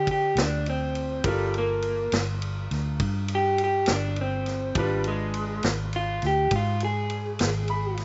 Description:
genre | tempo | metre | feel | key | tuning
slow blues | 68 BPM (dotted quarters) | 12/8 | straight | unclear | A4 = 440 Hz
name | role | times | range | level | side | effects
electric guitar through a small old amp | melody | 0.0-8.0 s | G3 to G#4 | -29 LUFS | equal | none
bright upright piano | accompaniment | 0.0-8.0 s | D4 to B5 | -38 LUFS | equal | slapback echo
vintage muted fingered electric bass | bass | 0.0-8.0 s | G1 to D3 | -31 LUFS | equal | none
vintage drum kit | drums | 0.1-8.0 s | kick drum, ride cymbal, snare drum | -34 LUFS | equal | none
room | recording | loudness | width
little or no reverb | recorded outdoors, with no room sound, nothing above 7.8 kHz | -26 LUFS | mono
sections
0.0-8.0 A section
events
clean electric guitar solo 0.0-8.0; upright piano fill 7.4-8.0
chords
0.0 Dm7; 1.2 Gm7; 4.8 G#dim7

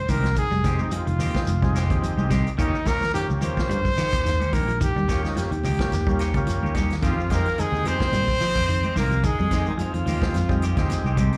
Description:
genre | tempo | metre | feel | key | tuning
afrobeat | 108 BPM | 4/4 | swing 55% on 16ths | F minor | A4 = 440 Hz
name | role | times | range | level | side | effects
breathy trumpet | melody | 0.0-10.9 s | Eb4 to C5 | -29 LUFS | equal | none
clean electric guitar | arpeggios | 0.1-11.4 s | Eb3 to G3 | -33 LUFS | equal | spring reverb
clean electric guitar | stabs | 0.1-11.4 s | Eb3 to G4 | -37 LUFS | equal | slapback echo
fingered electric bass | bass | 0.1-11.3 s | F1 to F3 | -27 LUFS | equal | none
vintage drum kit | drums | 0.1-11.4 s | hi-hat, kick drum, snare drum | -29 LUFS | equal | none
congas | percussion | 0.1-11.3 s | none | -36 LUFS | equal | none
shekere | percussion | 0.1-11.4 s | none | -36 LUFS | equal | none
combo organ | accompaniment | 0.6-11.2 s | Ab3 to Bb4 | -35 LUFS | equal | none
raspy tenor saxophone | second line | 7.0-10.9 s | Eb3 to C4 | -37 LUFS | equal | slapback echo
room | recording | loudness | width
small room ambience | live gig heard through the venue's PA, club reverb | -23 LUFS | mono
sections
0.0-11.4 A section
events
none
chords
0.0 Fm9; 2.6 Eb7; 7.0 Fm9

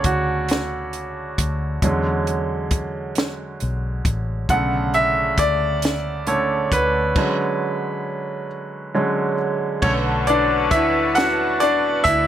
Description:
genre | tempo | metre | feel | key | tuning
slow six-eight R&B | 45 BPM (dotted quarters) | 6/8 | straight | B dorian | A4 = 440 Hz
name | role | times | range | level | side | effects
clear baby grand piano | accompaniment | 0.0-12.3 s | C#3 to F#5 | -20 LUFS | right 1 dB | none
compact cocktail drum kit | drums | 0.0-12.3 s | crash cymbal, hi-hat, kick drum, snare drum | -23 LUFS | equal | none
vintage muted fingered electric bass | bass | 0.1-12.3 s | A1 to E2 | -26 LUFS | left 1 dB | none
lush unison pad | sustained chords | 9.8-12.3 s | B4 to C#6 | -28 LUFS | equal | chorus
warm horn section | stabs | 9.8-12.0 s | D3 to F#4 | -26 LUFS | left 5 dB | none
room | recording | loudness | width
moderate studio reverb, RT60 0.7 s | none | -18 LUFS | side -11 dB against mid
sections
0.0-9.8 A section; 9.8-12.3 B section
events
grand piano solo 0.0-9.8, 9.8-12.3; stop 7.2-9.8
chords
0.0 Bm9 (rootless); 1.8 E13; 4.5 Bm9; 7.2 Bm69/D; 9.8 Bm9

